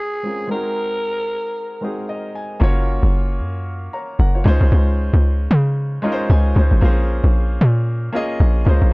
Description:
amapiano; 114 BPM; 4/4; swing 58% on 16ths; Bb minor; A4 = 440 Hz
growling alto saxophone; melody; 0.0-2.0 s; Ab4 to Bb4; -24 LUFS; equal; tape echo
warm grand piano; accompaniment; 0.0-8.9 s; Ab3 to Bb5; -24 LUFS; equal
hollow log drum bass; bass; 2.6-8.9 s; Gb1 to Db3; -14 LUFS; equal
studio ambience; dry, gritty hardware recording; -16 LUFS; side -27 dB against mid
0.0-2.6 A section; 2.6-8.9 B section
grand piano fill 1.8-2.6, 5.8-6.8; drop 2.6-8.9
0.0 Bbm9; 0.5 Ab9; 2.6 Gbmaj7; 4.5 Dbmaj9; 6.8 Bbm9

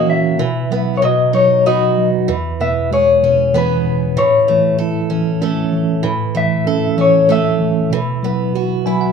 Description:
acoustic folk-pop ballad; 96 BPM; 3/4; straight; A4 = 441 Hz
electric guitar through a small old amp; melody; 0.0-9.1 s; B4 to E5; -14 LUFS; left 4 dB; tremolo
bell-like tine electric piano; accompaniment; 0.0-9.1 s; E2 to G#5; -17 LUFS; right 1 dB; medium stereo tremolo
picked old ladder-braced acoustic guitar; arpeggios; 0.0-9.1 s; E3 to A4; -20 LUFS; right 7 dB
moderate studio reverb, RT60 0.6 s; minimal, uncompressed stereo recording; -13 LUFS; side -6 dB against mid
0.0-9.1 A section
0.4 Bsus4; 1.0 B; 2.3 E6; 4.2 A; 7.9 Bsus4

